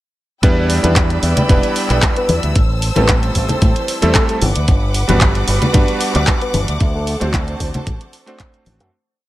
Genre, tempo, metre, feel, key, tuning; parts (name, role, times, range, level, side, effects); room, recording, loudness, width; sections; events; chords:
nu-disco, nu disco; 113 BPM; 4/4; swing 53% on 16ths; A4 = 442 Hz
clear electric grand piano; accompaniment; 0.4-8.9 s; G3 to C5; -20 LUFS; right 1 dB; dub echo
rich studio string section; sustained chords; 0.4-8.9 s; B4 to E6; -24 LUFS; equal; sidechain pumping
fingered electric bass with an envelope filter; bass; 0.4-8.9 s; E1 to A2; -18 LUFS; equal; tube saturation
electronic kick drum; drums; 0.4-8.5 s; -15 LUFS; equal; overdrive
pop drum kit; drums; 0.4-8.9 s; handclaps, hi-hat; -21 LUFS; equal
congas; percussion; 0.8-8.8 s; -21 LUFS; left 2 dB
soft octave-layered synth lead; melody; 2.2-7.3 s; A4 to B4; -24 LUFS; left 2 dB; chorus, tremolo, dub echo
digital ambience; -13 LUFS; side -16 dB against mid
0.4-8.9 drop
drop 0.4-8.9; fade-out 6.1-8.9
0.4 Em7; 2.6 Am7; 4.4 Gmaj7; 6.8 D7